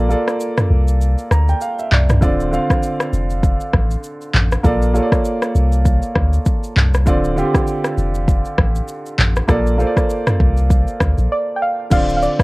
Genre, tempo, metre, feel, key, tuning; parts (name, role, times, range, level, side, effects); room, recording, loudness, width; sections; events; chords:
afrobeats; 99 BPM; 4/4; swing 58% on 16ths; A4 = 441 Hz
warm grand piano; accompaniment; 0.0-12.4 s; D3 to Bb5; -20 LUFS; right 1 dB; plate reverb
punchy sub bass; bass; 0.0-12.3 s; D1 to D2; -16 LUFS; equal
deep house drum kit; drums; 0.1-12.4 s; crash cymbal, handclaps, kick drum, rim click, shaker, toms; -17 LUFS; equal
soft round pluck; melody; 11.3-12.4 s; D5 to G5; -18 LUFS; right 1 dB; chorus
light reverb; worn, warbling old tape, cassette tape, warbly pitch drift; -14 LUFS; side -23 dB against mid
0.0-11.9 A section
break 0.0-2.2, 11.3-11.9; grand piano fill 1.0-2.2
0.0 Bbmaj7; 2.2 Dm7; 4.6 Bbmaj7; 7.1 Dm7; 9.5 Bbmaj7; 11.9 Dm7